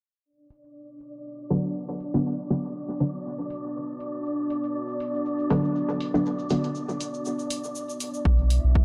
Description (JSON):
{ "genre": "dub techno", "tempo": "120 BPM", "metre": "4/4", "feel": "swing 55% on 16ths", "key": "B minor", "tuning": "A4 = 440 Hz", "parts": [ { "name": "deep dark ambient pad", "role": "sustained chords", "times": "2.7-8.8 s", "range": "B3 to D5", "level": "-35 LUFS", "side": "equal", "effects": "chorus, built-in reverb, sidechain pumping" }, { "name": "wind-like tuned noise texture", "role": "texture", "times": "0.7-8.8 s", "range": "D4 to E5", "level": "-37 LUFS", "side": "equal", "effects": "built-in reverb, sidechain pumping" }, { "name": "electronic hi-hat", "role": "drums", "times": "0.5-8.6 s", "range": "none", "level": "-40 LUFS", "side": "equal", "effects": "none" }, { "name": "filtered dub chord stab", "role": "stabs", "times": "1.5-6.7 s", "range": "D3 to D4", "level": "-29 LUFS", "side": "equal", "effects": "chorus, phaser, dub echo" }, { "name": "tube shaker", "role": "percussion", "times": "4.3-8.2 s", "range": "none", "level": "-43 LUFS", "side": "equal", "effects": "none" }, { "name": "soft dub sub bass", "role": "bass", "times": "8.3-8.8 s", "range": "B1", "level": "-23 LUFS", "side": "equal", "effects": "tube saturation, sidechain pumping" }, { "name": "electronic kick drum", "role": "drums", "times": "8.3-8.8 s", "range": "none", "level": "-24 LUFS", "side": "equal", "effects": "none" } ], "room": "moderate lush hall reverb, RT60 2.5 s", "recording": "dry, gritty hardware recording, cassette tape, low-pass filter", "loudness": "-28 LUFS", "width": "mono", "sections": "0.3-8.3 A section", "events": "filter sweep on synth stab 0.3-8.3; filter sweep 0.3-8.3", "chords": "0.3 Bm", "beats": "| 0.26 0.76 1.25 1.75 | 2.25 2.75 3.25 3.75 | 4.25 4.75 5.25 5.75 | 6.25 6.75 7.25 7.75 | 8.26 8.76" }